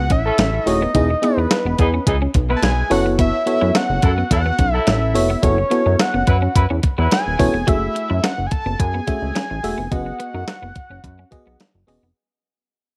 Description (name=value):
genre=early-eighties boogie funk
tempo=107 BPM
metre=4/4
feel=straight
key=F# dorian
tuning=A4 = 438 Hz
part: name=fat analog lead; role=melody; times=0.0-11.6 s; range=B4 to A5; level=-25 LUFS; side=equal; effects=phaser
part: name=clean electric guitar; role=riff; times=0.0-12.1 s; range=B3 to F#4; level=-29 LUFS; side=equal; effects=analog chorus
part: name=chorused synth bass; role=bass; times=0.0-12.1 s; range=D#1 to F#2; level=-23 LUFS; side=equal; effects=none
part: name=crisp 8-bit digital drum machine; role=drums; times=0.1-12.0 s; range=hi-hat, kick drum, snare drum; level=-22 LUFS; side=equal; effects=none
part: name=clear horn section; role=second line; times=0.3-7.4 s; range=E3 to B4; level=-27 LUFS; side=equal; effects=none
part: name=FM electric piano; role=accompaniment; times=0.7-12.0 s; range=A3 to E5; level=-23 LUFS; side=equal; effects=chorus
room=digital ambience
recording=none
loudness=-18 LUFS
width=mono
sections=0.0-7.7 A section; 7.7-12.2 B section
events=fade-out 7.7-12.2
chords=0.0 F#m9; 0.9 Emaj7; 2.9 B9sus4/F#; 5.4 A69/F#; 7.7 F#m9; 9.9 G#m7/F#